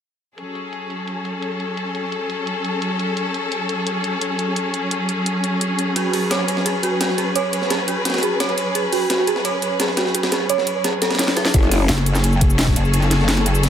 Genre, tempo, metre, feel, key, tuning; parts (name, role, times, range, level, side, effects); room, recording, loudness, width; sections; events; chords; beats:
dark technical drum and bass; 172 BPM; 4/4; straight; F# minor; A4 = 440 Hz
clear symphonic string section; sustained chords; 0.4-13.7 s; F#3 to B4; -22 LUFS; left 1 dB; sidechain pumping
drum and bass drum kit; drums; 0.4-13.7 s; hi-hat, shaker, snare drum; -23 LUFS; equal; overdrive, low-pass filter on hats, low-pass filter on snare, low-pass filter on perc, low-pass filter on room
dark detuned synth bell; arpeggios; 6.0-11.5 s; F#4 to C#5; -22 LUFS; right 3 dB; chorus, phaser, sidechain pumping, digital delay
breakbeat sampler-style drum kit; drums; 6.0-13.7 s; hi-hat, ride cymbal, snare drum; -25 LUFS; equal; high-pass filter on cymbals, high-pass filter on hats, high-pass filter on snare, high-pass filter on room
growl bass; bass; 11.5-11.9 s; F#1; -17 LUFS; left 1 dB; chorus, overdrive, sidechain pumping
electronic kick drum; drums; 11.5-12.7 s; -16 LUFS; equal; overdrive
pulsing pluck wobble bass; bass; 11.9-13.7 s; F#1; -17 LUFS; equal; distortion, chorus
light reverb; -18 LUFS; side -9 dB against mid
0.4-11.5 A section; 11.5-13.7 B section
drum fill 11.2-11.5; drop 11.5-13.7
0.4 F#m
| 0.38 0.73 1.08 1.43 | 1.77 2.12 2.47 2.82 | 3.17 3.52 3.87 4.22 | 4.57 4.91 5.26 5.61 | 5.96 6.31 6.66 7.01 | 7.36 7.70 8.05 8.40 | 8.75 9.10 9.45 9.80 | 10.15 10.49 10.84 11.19 | 11.54 11.89 12.24 12.59 | 12.94 13.29 13.63